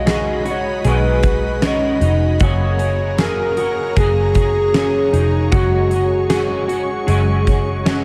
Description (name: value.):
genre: dream pop.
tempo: 77 BPM.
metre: 4/4.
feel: straight.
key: F# major.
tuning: A4 = 440 Hz.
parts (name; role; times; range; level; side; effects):
hollow clarinet-like synth lead; melody; 0.0-7.9 s; F#4 to D#5; -23 LUFS; equal; chorus, digital delay.
semi-hollow electric guitar; accompaniment; 0.0-8.0 s; B2 to G#4; -27 LUFS; equal; harmonic tremolo, ensemble chorus.
ethereal airy pad; sustained chords; 0.0-8.0 s; F#4 to C#6; -29 LUFS; equal; ensemble chorus, built-in reverb.
mellow electric guitar; arpeggios; 0.0-8.0 s; C#4 to G#4; -26 LUFS; equal; analog chorus, digital delay.
vintage muted picked electric bass; bass; 0.0-8.0 s; E#1 to B1; -22 LUFS; equal; none.
huge arena drum kit; drums; 0.1-8.0 s; hi-hat, kick drum, snare drum, tambourine; -23 LUFS; equal; none.
room: light reverb, small room ambience.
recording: none.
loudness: -17 LUFS.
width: mono.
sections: 0.0-8.0 A section.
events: none.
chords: 0.0 B6; 2.4 F#add9; 5.5 F#sus2.